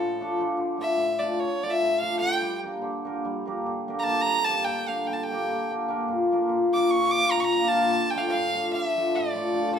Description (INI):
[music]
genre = balkan folk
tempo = 294 BPM (eighths)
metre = 9/8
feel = straight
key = D harmonic minor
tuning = A4 = 440 Hz
[part]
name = clear fiddle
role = melody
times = 0.0-9.8 s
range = A4 to D6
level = -26 LUFS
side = right 1 dB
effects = none
[part]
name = cimbalom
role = accompaniment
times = 0.0-9.8 s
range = A2 to Bb4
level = -25 LUFS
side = left 1 dB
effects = none
[sound]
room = moderate stone room reverb, RT60 1.0 s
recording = band playing live in one room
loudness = -23 LUFS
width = side -8 dB against mid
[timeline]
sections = 0.0-9.7 A section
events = fiddle solo 0.0-9.7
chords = 0.0 Dm; 2.4 Gm; 6.1 Bb; 7.9 Dm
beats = 0.16 0.36 | 0.57 0.77 0.97 1.18 1.38 1.59 1.79 2.00 2.20 | 2.41 2.61 2.82 3.02 3.23 3.43 3.63 3.84 4.04 | 4.25 4.45 4.66 4.86 5.07 5.27 5.47 5.68 5.88 | 6.08 6.29 6.49 6.69 6.89 7.10 7.30 7.50 7.70 | 7.91 8.11 8.31 8.51 8.71 8.91 9.11 9.31 9.52 | 9.71